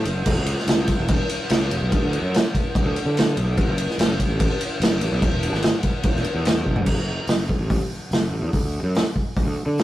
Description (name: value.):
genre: blues rock power trio and southern rock.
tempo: 145 BPM.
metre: 4/4.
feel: straight.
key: A major.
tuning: A4 = 438 Hz.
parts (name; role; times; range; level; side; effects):
fuzz fingered electric bass; bass; 0.0-9.8 s; E1 to D3; -24 LUFS; equal; overdrive.
vintage drum kit; drums; 0.1-9.8 s; crash cymbal, hi-hat, kick drum, ride cymbal, snare drum, toms; -21 LUFS; equal; none.
room: light reverb.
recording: rough rehearsal-room recording, warm saturation.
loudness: -19 LUFS.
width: side -14 dB against mid.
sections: 0.0-6.9 A section; 6.9-9.8 B section.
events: drum fill 6.7.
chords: none.